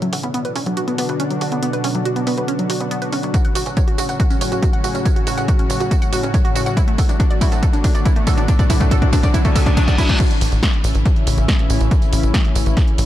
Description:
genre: uplifting trance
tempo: 140 BPM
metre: 4/4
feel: straight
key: unclear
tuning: A4 = 440 Hz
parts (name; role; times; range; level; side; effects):
- lush unison pad; sustained chords; 0.0-13.1 s; A2 to F#4; -23 LUFS; left 1 dB; chorus, sidechain pumping
- analog pluck; arpeggios; 0.0-10.2 s; F#3 to F#5; -24 LUFS; right 2 dB; chorus, sidechain pumping, tape echo
- big-room dance drum kit; drums; 0.0-13.1 s; crash cymbal, hi-hat, snare drum, tambourine; -27 LUFS; right 1 dB; none
- tight sequencer bass; bass; 0.1-13.1 s; F#1 to D2; -22 LUFS; equal; sidechain pumping, high-pass filter
- electronic kick drum; drums; 3.3-12.9 s; none; -16 LUFS; equal; none
- riser and reverse cymbal; sound effects; 6.0-10.2 s; none; -28 LUFS; right 1 dB; none
room: digital ambience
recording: dark, warm production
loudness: -15 LUFS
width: side -13 dB against mid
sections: 0.0-10.2 A section; 10.2-13.1 B section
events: build-up 0.0-10.2; filter sweep on synth arpeggio sound 0.0-10.2; drum fill 3.3-10.2; riser 6.0-10.2; reverse cymbal 9.3-10.2; drop 10.2-13.1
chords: 0.0 Bm; 3.3 F#m; 6.8 D; 10.2 A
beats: 0.34 0.77 1.20 | 1.63 2.05 2.48 2.91 | 3.34 3.77 4.20 4.63 | 5.05 5.48 5.91 6.34 | 6.77 7.20 7.63 8.05 | 8.48 8.91 9.34 9.77 | 10.20 10.63 11.05 11.48 | 11.91 12.34 12.77

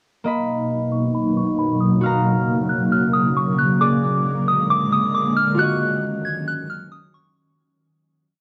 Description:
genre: hip hop, atmospheric cloud-rap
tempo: 135 BPM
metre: 4/4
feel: half-time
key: Eb minor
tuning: A4 = 440 Hz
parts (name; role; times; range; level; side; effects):
- concert harp; texture; 0.2-8.1 s; A#3 to Db6; -28 LUFS; equal; cassette tape
- soft synth bell; melody; 0.3-7.4 s; B5 to Ab6; -24 LUFS; equal; chorus, low-pass filter, cassette tape, tape echo
- ethereal airy pad; sustained chords; 0.5-7.3 s; B2 to D#4; -22 LUFS; equal; ensemble chorus, built-in reverb, tremolo, low-pass filter, cassette tape
room: light reverb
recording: home recording on cassette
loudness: -20 LUFS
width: mono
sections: 0.3-7.4 breakdown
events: filter sweep 0.3-7.4; fade-out 5.6-7.4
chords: 0.3 Bmaj7; 2.0 Gbmaj7; 3.8 Bb7; 5.6 Ebm9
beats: | 0.26 0.70 1.14 1.59 | 2.03 2.48 2.92 3.37 | 3.81 4.25 4.70 5.14 | 5.59 6.03 6.48 6.92

